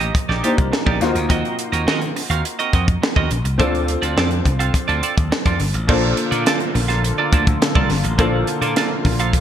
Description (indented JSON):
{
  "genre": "polished 1980s jazz-funk pop",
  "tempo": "104 BPM",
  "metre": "4/4",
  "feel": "straight",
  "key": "Bb major",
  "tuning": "A4 = 440 Hz",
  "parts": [
    { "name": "warm concert grand piano", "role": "accompaniment", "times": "0.0-9.4 s", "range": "Bb3 to C5", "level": "-24 LUFS", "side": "left 2 dB", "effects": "ensemble chorus" },
    { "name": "semi-hollow electric guitar", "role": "riff", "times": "0.0-9.4 s", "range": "Bb3 to F5", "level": "-23 LUFS", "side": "right 6 dB", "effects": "analog chorus" },
    { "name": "slap bass", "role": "bass", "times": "0.0-9.4 s", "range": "G1 to Eb3", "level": "-21 LUFS", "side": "equal", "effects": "none" },
    { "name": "crisp fusion drum kit", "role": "drums", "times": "0.0-9.4 s", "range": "crash cymbal, hi-hat, kick drum, snare drum", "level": "-20 LUFS", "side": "equal", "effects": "gated reverb" },
    { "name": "chorused pulse-width pad", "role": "sustained chords", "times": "5.9-9.4 s", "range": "D3 to A4", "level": "-25 LUFS", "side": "left 1 dB", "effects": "none" }
  ],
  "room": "light reverb, studio ambience",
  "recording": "bright 1980s-style digital production",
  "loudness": "-16 LUFS",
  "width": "side -10 dB against mid",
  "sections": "0.0-5.9 A section; 5.9-9.4 B section",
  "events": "none",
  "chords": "0.0 F9sus4 (rootless); 1.0 Ebm6; 3.6 Dm7; 5.9 Bbmaj7"
}